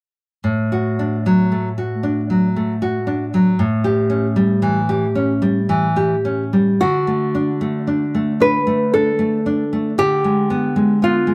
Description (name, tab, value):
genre	romantic duo for nylon-string guitar and classical guitar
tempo	57 BPM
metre	3/4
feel	rubato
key	D major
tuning	A4 = 441 Hz
part	nylon-string guitar	accompaniment	0.4-11.3 s	A2 to G4	-19 LUFS	equal	none
part	nylon-string guitar	melody	6.8-11.3 s	F4 to B4	-20 LUFS	equal	none
room	light reverb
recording	none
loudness	-18 LUFS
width	mono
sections	0.4-6.8 A section; 6.8-11.3 B section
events	none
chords	0.4 D/A; 3.6 A7; 6.8 D; 10.0 Ddim7